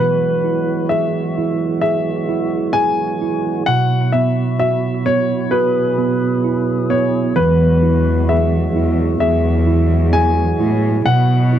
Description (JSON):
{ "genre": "pop ballad", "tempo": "65 BPM", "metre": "4/4", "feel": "straight", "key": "E major", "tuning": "A4 = 440 Hz", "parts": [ { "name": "warm concert grand piano", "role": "melody", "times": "0.0-11.6 s", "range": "B4 to G#5", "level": "-19 LUFS", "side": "left 4 dB", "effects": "tape echo" }, { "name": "tine electric piano", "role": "accompaniment", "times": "0.0-11.6 s", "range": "B2 to G#4", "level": "-18 LUFS", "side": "right 7 dB", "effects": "none" }, { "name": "tonewheel organ", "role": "sustained chords", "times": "0.0-11.6 s", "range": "B2 to G#4", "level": "-24 LUFS", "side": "left 3 dB", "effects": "slow rotary speaker" }, { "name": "warm studio cello section", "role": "bass", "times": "7.4-11.6 s", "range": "E2 to B2", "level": "-16 LUFS", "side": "left 1 dB", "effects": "none" } ], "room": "little or no reverb", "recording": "dry, close 1970s-style studio recording", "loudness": "-14 LUFS", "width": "side -10 dB against mid", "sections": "0.0-11.6 A section", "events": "none", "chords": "0.0 Eadd9; 3.7 Bsus4; 7.4 Eadd9; 11.1 Bsus4", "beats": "0.91 1.83 2.75 | 3.68 4.60 5.52 6.45 | 7.37 8.29 9.21 10.14 | 11.06" }